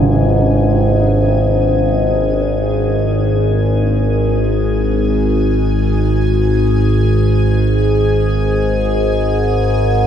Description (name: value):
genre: dark ambient drone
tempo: free time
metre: none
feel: none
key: unclear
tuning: A4 = 440 Hz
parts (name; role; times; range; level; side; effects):
- overtone-sweeping drone; drone; 0.0-10.1 s; G#1 to G#2; -13 LUFS; equal; chorus, built-in reverb
- icy glass pad; texture; 0.0-10.1 s; G#4 to G#5; -29 LUFS; left 1 dB; chorus, built-in reverb
room: wet huge ambient reverb, RT60 9.2 s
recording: in a vast, echoing space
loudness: -12 LUFS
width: side -9 dB against mid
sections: 0.0-10.1 A section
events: fade-in on ambient pad 0.0-10.1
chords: none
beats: free time